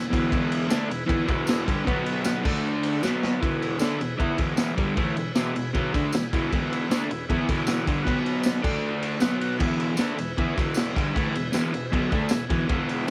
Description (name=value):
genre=garage rock duo or trio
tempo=155 BPM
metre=4/4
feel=straight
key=E mixolydian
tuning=A4 = 440 Hz
part: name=combo organ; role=sustained chords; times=0.0-13.1 s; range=A3 to G#5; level=-37 LUFS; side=equal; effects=spring reverb, cassette tape
part: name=crunchy overdriven guitar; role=riff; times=0.0-13.1 s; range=E2 to E4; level=-28 LUFS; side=equal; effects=cassette tape
part: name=raw garage drum kit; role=drums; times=0.1-13.0 s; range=crash cymbal, kick drum, ride cymbal, snare drum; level=-29 LUFS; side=equal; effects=cassette tape
part: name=tambourine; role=percussion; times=0.7-13.1 s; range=none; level=-40 LUFS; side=equal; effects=none
room=light reverb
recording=home recording on cassette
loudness=-25 LUFS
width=mono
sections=0.0-3.4 A section; 3.4-13.1 B section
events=drum fill 3.0-3.4; transistor combo organ fill 11.9-12.7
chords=0.0 E; 1.9 B5; 2.5 D5; 3.0 B5; 3.4 E; 8.1 B5; 8.6 D5; 9.2 B5; 9.6 E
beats=| 0.33 0.71 1.10 1.49 | 1.87 2.26 2.64 3.03 | 3.42 3.80 4.19 4.58 | 4.97 5.35 5.74 6.13 | 6.51 6.90 7.29 7.67 | 8.06 8.45 8.83 9.22 | 9.61 9.99 10.38 10.76 | 11.15 11.54 11.92 12.31 | 12.69 13.08